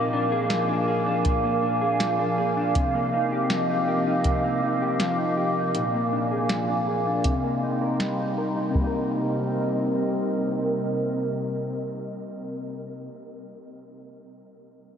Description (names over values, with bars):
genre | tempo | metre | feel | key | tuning
dream pop | 80 BPM | 4/4 | straight | C minor | A4 = 440 Hz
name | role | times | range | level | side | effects
warbly tape-like pad | sustained chords | 0.0-12.5 s | C3 to D6 | -26 LUFS | right 2 dB | chorus, built-in reverb, low-pass filter
electric guitar through a small old amp | arpeggios | 0.0-13.2 s | Bb2 to Bb4 | -26 LUFS | left 1 dB | analog chorus, low-pass filter, diffuse ambient delay
soft vintage rhythm box | drums | 0.5-8.9 s | hi-hat, kick drum, snare drum | -28 LUFS | equal | none
room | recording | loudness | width
wet huge ambient reverb, RT60 8.5 s | dreamy mix soaked in reverb | -22 LUFS | side -8 dB against mid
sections
0.0-8.7 A section; 8.7-11.7 B section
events
filter sweep 0.0-8.7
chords
0.0 Bb7; 2.7 Cm11; 5.7 Bb7; 7.2 Cm7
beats
0.50 1.25 2.00 | 2.75 3.50 4.25 5.00 | 5.75 6.50 7.25 8.00 | 8.75 9.50 10.25 11.00